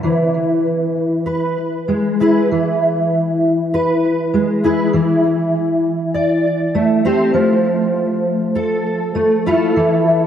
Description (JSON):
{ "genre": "folk, solo fingerstyle acoustic guitar", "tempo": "99 BPM", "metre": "4/4", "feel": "rubato", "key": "unclear", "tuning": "A4 = 440 Hz", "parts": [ { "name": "fingerpicked steel-string acoustic guitar", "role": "solo", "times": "0.0-10.3 s", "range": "E3 to D5", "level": "-14 LUFS", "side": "equal", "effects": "ensemble chorus, tape echo" } ], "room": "wet plate reverb, RT60 2.8 s", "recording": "dreamy mix soaked in reverb", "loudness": "-14 LUFS", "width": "side -9 dB against mid", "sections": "0.0-10.3 A section", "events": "none", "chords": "0.0 E; 4.9 Am/E; 7.3 F; 9.7 Esus4", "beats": "| 0.03 0.64 1.26 1.88 | 2.50 3.11 3.72 4.33 | 4.93 5.53 6.13 6.73 | 7.33 7.93 8.54 9.14 | 9.75" }